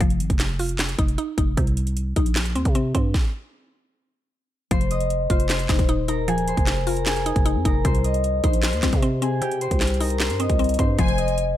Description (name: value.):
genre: hip hop, trap.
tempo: 153 BPM.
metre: 4/4.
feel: half-time.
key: F minor.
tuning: A4 = 438 Hz.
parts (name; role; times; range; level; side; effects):
mallet-like synth pluck; accompaniment; 0.0-11.6 s; C3 to F4; -28 LUFS; left 2 dB; chorus.
growling 808-style bass; bass; 0.0-11.6 s; Eb1 to C3; -25 LUFS; equal; none.
house drum kit; drums; 0.0-11.5 s; handclaps, hi-hat, kick drum, snare drum; -22 LUFS; equal; none.
concert harp; melody; 4.7-11.6 s; G4 to Eb6; -25 LUFS; left 2 dB; digital delay.
warm studio violin section; second line; 11.0-11.4 s; Ab5; -30 LUFS; right 2 dB; none.
room: digital ambience.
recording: none.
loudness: -19 LUFS.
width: side -12 dB against mid.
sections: 0.0-4.7 A section; 4.7-11.6 B section.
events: stop 3.1-4.7.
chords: 0.0 F7(no3); 1.6 Cm; 4.7 Fm7; 7.8 Cm; 11.0 Fm7.